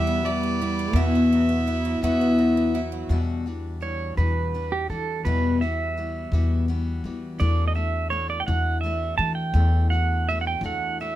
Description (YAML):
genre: acoustic folk duo or small band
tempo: 56 BPM (dotted quarters)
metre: 6/8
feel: straight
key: E minor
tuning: A4 = 437 Hz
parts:
  - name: warm fiddle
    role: melody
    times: 0.0-2.8 s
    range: D5 to E5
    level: -28 LUFS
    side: equal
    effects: none
  - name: pedal steel guitar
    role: second line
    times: 0.0-11.2 s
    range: G3 to A5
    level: -26 LUFS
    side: right 4 dB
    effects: none
  - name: picked steel-string acoustic guitar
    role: accompaniment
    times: 0.0-11.2 s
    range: E2 to G4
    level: -27 LUFS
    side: left 4 dB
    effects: none
  - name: picked twelve-string acoustic guitar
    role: arpeggios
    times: 0.0-3.2 s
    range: F#3 to E4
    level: -31 LUFS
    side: right 4 dB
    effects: none
  - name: upright bass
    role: bass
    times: 0.0-11.2 s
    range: E2 to E3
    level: -25 LUFS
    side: equal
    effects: none
room: moderate studio ambience, RT60 0.5 s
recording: close, detailed microphones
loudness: -21 LUFS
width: side -13 dB against mid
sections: 0.0-3.1 A section; 3.1-11.2 B section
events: pedal steel guitar solo 3.1-11.2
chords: 0.0 Em; 0.9 Esus2; 3.1 Gmaj7/E; 5.2 Emadd9; 7.4 Dadd9/E